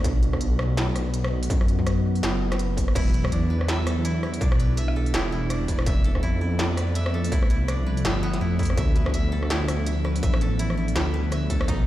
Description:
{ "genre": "half-time drum and bass", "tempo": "165 BPM", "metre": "4/4", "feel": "swing 58% on 16ths, half-time", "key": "unclear", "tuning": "A4 = 439 Hz", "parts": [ { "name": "deep dark ambient pad", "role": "sustained chords", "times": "0.0-11.9 s", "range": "F3 to B4", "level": "-31 LUFS", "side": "equal", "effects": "chorus, built-in reverb, sidechain pumping" }, { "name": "dark detuned saw bass", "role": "bass", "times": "0.0-11.9 s", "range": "E1 to F#2", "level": "-25 LUFS", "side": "equal", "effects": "none" }, { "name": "electronic kick drum", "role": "drums", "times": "0.0-11.8 s", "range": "none", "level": "-23 LUFS", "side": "equal", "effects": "distortion" }, { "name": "industrial drum kit", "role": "drums", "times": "0.0-11.8 s", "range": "crash cymbal, hi-hat, rim click, snare drum", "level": "-30 LUFS", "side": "equal", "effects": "none" }, { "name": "metallic inharmonic drone", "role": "texture", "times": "0.0-11.9 s", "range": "B3", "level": "-36 LUFS", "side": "right 4 dB", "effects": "chorus, built-in reverb" }, { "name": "koto", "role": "arpeggios", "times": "3.0-11.9 s", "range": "B3 to E5", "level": "-34 LUFS", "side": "right 1 dB", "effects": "dub echo" } ], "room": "digital ambience", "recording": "played on a big sound system in a bare room, large studio reverb", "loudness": "-21 LUFS", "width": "side -14 dB against mid", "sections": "0.0-11.9 A section", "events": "none", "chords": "0.0 B; 3.0 Em7; 5.9 F; 8.8 Dm" }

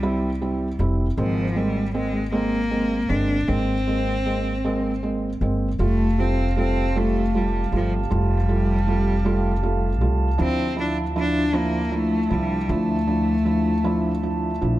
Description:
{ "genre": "pop", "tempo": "52 BPM (dotted quarters)", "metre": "6/8", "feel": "straight", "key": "F major", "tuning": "A4 = 441 Hz", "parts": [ { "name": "warm cello", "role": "melody", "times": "0.0-14.6 s", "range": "F3 to D4", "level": "-25 LUFS", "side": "left 1 dB", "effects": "none" }, { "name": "felt-muted upright piano", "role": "accompaniment", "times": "0.0-14.8 s", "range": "F3 to F4", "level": "-25 LUFS", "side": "right 2 dB", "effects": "none" }, { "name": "upright bass", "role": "bass", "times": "0.0-14.8 s", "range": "F1 to D2", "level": "-24 LUFS", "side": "equal", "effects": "none" }, { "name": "glass harmonica", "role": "sustained chords", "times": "5.8-14.8 s", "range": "C4 to A5", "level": "-31 LUFS", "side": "right 3 dB", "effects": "none" } ], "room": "light reverb, studio reverb", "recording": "dark, warm production", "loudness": "-20 LUFS", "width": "side -15 dB against mid", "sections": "0.0-14.8 A section", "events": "none", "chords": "0.0 C; 1.2 Abadd9; 5.8 Fadd9; 10.4 Dmadd9" }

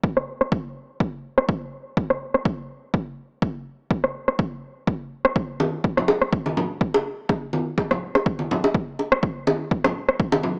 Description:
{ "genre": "house", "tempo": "124 BPM", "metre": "4/4", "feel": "swing 55% on 16ths", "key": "none", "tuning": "none", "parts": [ { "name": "electronic kick drum", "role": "drums", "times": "0.0-10.3 s", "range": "none", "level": "-27 LUFS", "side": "equal", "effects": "overdrive, studio reverb" }, { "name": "electronic rim click", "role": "drums", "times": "0.2-10.2 s", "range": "none", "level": "-23 LUFS", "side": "equal", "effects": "overdrive, low-pass filter on snare, studio reverb, low-pass filter on hats" }, { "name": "congas and bongos", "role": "percussion", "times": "5.6-10.5 s", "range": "none", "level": "-25 LUFS", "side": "equal", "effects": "none" } ], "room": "light reverb", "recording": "dry, gritty hardware recording, transformer saturation, small speaker sound", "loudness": "-24 LUFS", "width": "mono", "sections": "0.0-10.6 A section", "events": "none", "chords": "none" }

